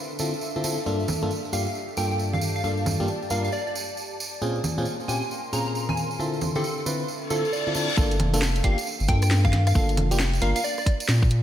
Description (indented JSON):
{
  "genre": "UK garage, two-step garage",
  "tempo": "135 BPM",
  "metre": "4/4",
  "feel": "swing 63% on 16ths",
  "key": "G dorian",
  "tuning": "A4 = 440 Hz",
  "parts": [
    { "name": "ethereal airy pad", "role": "texture", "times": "0.0-8.0 s", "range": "D4 to C6", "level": "-36 LUFS", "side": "equal", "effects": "ensemble chorus, built-in reverb, sidechain pumping" },
    { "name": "tambourine", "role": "percussion", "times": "0.1-11.3 s", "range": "none", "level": "-34 LUFS", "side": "right 4 dB", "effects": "none" },
    { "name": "FM electric piano", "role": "stabs", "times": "0.2-10.6 s", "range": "G2 to B4", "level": "-28 LUFS", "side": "equal", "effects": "chorus, analog delay" },
    { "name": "garage drum kit", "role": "drums", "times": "1.1-11.4 s", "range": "congas, hi-hat, rim click, snare drum", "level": "-29 LUFS", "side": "right 1 dB", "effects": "overdrive" },
    { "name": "plucky unison lead", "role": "melody", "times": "1.5-10.8 s", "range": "A4 to Bb5", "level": "-30 LUFS", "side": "equal", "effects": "phaser, analog delay" },
    { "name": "reverse cymbal", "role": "sound effects", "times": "7.3-8.0 s", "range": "none", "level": "-31 LUFS", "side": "left 4 dB", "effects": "none" },
    { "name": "saturated sub bass", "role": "bass", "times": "8.0-11.4 s", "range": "F1 to Bb2", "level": "-22 LUFS", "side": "equal", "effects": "none" },
    { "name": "electronic kick drum", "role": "drums", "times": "8.0-11.3 s", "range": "none", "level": "-22 LUFS", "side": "equal", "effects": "overdrive" }
  ],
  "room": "moderate lush hall reverb, RT60 1.8 s, digital ambience",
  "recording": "dreamy mix soaked in reverb",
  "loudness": "-22 LUFS",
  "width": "side -11 dB against mid",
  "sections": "0.0-8.0 A section; 8.0-11.4 B section",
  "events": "reverse cymbal 7.3-8.0; drop 8.0-11.4",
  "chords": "0.0 Dm9; 0.9 Gm9; 4.2 Bbm9; 6.2 Dm9; 8.0 Gm9"
}